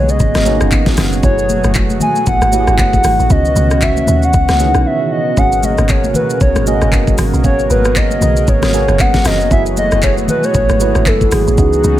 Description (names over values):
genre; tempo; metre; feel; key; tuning
amapiano; 116 BPM; 4/4; swing 58% on 16ths; G# phrygian; A4 = 439 Hz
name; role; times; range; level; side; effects
hollow clarinet-like synth lead; melody; 0.0-12.0 s; G#4 to G#5; -16 LUFS; equal; chorus, ping-pong delay
bright tine electric piano; accompaniment; 0.0-12.0 s; D#3 to B4; -20 LUFS; right 4 dB; phaser
warm analog pad; sustained chords; 0.0-12.0 s; B2 to A#4; -21 LUFS; right 2 dB; chorus, sidechain pumping
deep log drum bass; bass; 0.0-12.0 s; F#1 to D#2; -15 LUFS; equal; none
smooth R&B drum kit; drums; 0.1-12.0 s; handclaps, hi-hat, kick drum, rim click, shaker, snare drum; -16 LUFS; equal; none
congas; percussion; 0.3-12.0 s; none; -23 LUFS; left 4 dB; none
room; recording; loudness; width
digital ambience; none; -10 LUFS; side -13 dB against mid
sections
0.0-12.0 A section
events
break 4.9-5.4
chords
0.0 G#m11; 1.2 F#m11; 3.3 C#m11; 5.4 G#m11; 9.5 F#m11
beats
0.20 0.72 | 1.24 1.75 2.27 2.79 | 3.30 3.82 4.34 4.86 | 5.37 5.89 6.41 6.92 | 7.44 7.96 8.48 8.99 | 9.51 10.03 10.54 11.06 | 11.58